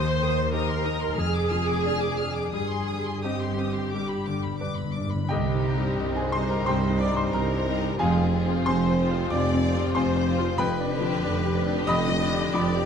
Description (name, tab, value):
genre	classical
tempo	84-99 BPM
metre	4/4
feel	rubato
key	C minor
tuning	A4 = 440 Hz
part	clear concert grand piano	melody	0.0-12.9 s	C2 to Eb6	-26 LUFS	left 3 dB	none
part	warm symphonic violin section	melody	0.0-12.8 s	Eb4 to F6	-35 LUFS	left 5 dB	none
part	warm symphonic violin section	second line	0.0-12.9 s	G4 to Eb5	-34 LUFS	left 3 dB	none
part	clear symphonic viola section	accompaniment	0.0-12.8 s	D3 to C5	-31 LUFS	right 2 dB	none
part	clear symphonic cello section	bass	0.0-12.9 s	Eb2 to C3	-32 LUFS	right 4 dB	none
part	warm symphonic double bass section	bass	0.0-12.9 s	F1 to Eb2	-32 LUFS	right 5 dB	none
part	timpani	percussion	3.9-5.2 s	G2	-33 LUFS	left 2 dB	none
part	mellow tuba	bass	5.3-12.9 s	F1 to C2	-32 LUFS	right 5 dB	none
room	moderate concert hall reverb, RT60 2.4 s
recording	close, detailed microphones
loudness	-23 LUFS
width	side -7 dB against mid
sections	0.0-5.3 A section; 5.3-12.9 B section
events	timpani fill 3.9-5.3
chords	0.0 Cm/Eb; 1.2 Ddim/F; 2.5 Cm/G; 3.9 G; 5.3 Cm; 8.0 Fm; 10.6 G7/F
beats	0.53 1.17 1.84 | 2.53 3.24 3.93 4.61 | 5.30 6.00 6.67 7.33 | 8.00 8.65 9.31 9.96 | 10.59 11.23 11.88 12.54